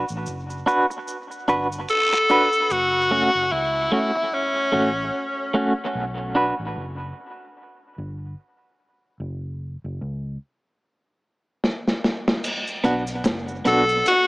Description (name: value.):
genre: dub reggae.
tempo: 74 BPM.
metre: 4/4.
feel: swing 58% on 16ths.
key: B minor.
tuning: A4 = 438 Hz.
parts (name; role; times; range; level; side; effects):
clean electric guitar; accompaniment; 0.0-6.5, 12.8-13.8 s; A3 to B4; -23 LUFS; right 1 dB; tremolo, tape echo.
vintage muted fingered electric bass; bass; 0.1-14.0 s; F#1 to C#2; -32 LUFS; equal; none.
cabasa and guiro; percussion; 0.1-2.9, 12.4-14.3 s; none; -33 LUFS; right 1 dB; tape echo.
edgy tenor saxophone; melody; 1.9-5.5, 13.7-14.3 s; C#4 to A4; -19 LUFS; left 1 dB; tape echo.
crunchy breakbeat drum kit; drums; 11.6-14.3 s; crash cymbal, hi-hat, kick drum, snare drum; -24 LUFS; equal; none.
room: moderate echo chamber reverb, RT60 2.5 s.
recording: echo-heavy mix, small speaker sound.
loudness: -20 LUFS.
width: side -23 dB against mid.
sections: 0.0-12.4 A section; 12.4-14.3 B section.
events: break 2.7-12.4; drum fill 11.6-12.4.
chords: 0.0 Bm; 2.7 F#m; 5.9 B5; 9.2 F#5; 12.4 Bm.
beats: 0.26 1.07 1.89 | 2.70 3.51 4.32 5.13 | 5.94 6.76 7.57 8.38 | 9.19 10.00 10.81 11.63 | 12.44 13.25 14.06.